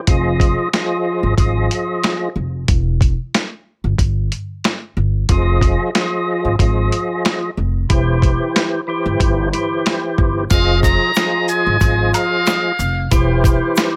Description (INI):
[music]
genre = hip hop, boom-bap hip-hop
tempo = 92 BPM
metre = 4/4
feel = swing 55% on 16ths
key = F minor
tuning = A4 = 444 Hz
[part]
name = percussive tonewheel organ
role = accompaniment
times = 0.1-14.0 s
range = E3 to Eb5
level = -21 LUFS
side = equal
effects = overdrive, chorus vibrato, slow rotary speaker, cassette tape, high-pass filter, low-pass filter, plate reverb
[part]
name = upright bass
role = bass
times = 0.1-13.6 s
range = E1 to Ab1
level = -20 LUFS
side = equal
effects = none
[part]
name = lo-fi sampler-style drum kit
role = drums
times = 0.1-13.9 s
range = hi-hat, kick drum, shaker, snare drum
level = -18 LUFS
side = equal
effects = none
[part]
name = trumpet with metal mute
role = melody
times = 10.5-13.1 s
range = F5 to Bb5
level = -21 LUFS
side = equal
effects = high-pass filter, low-pass filter, tape echo
[part]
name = tube shaker and woodblock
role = percussion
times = 10.5-13.9 s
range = none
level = -31 LUFS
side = equal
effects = none
[sound]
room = moderate studio reverb, RT60 0.5 s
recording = none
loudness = -17 LUFS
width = mono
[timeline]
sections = 0.0-10.5 A section; 10.5-14.0 B section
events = none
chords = 0.1 Fm7; 2.7 Em; 5.3 Fm7; 7.9 C/E; 10.5 Fm7; 13.1 C/E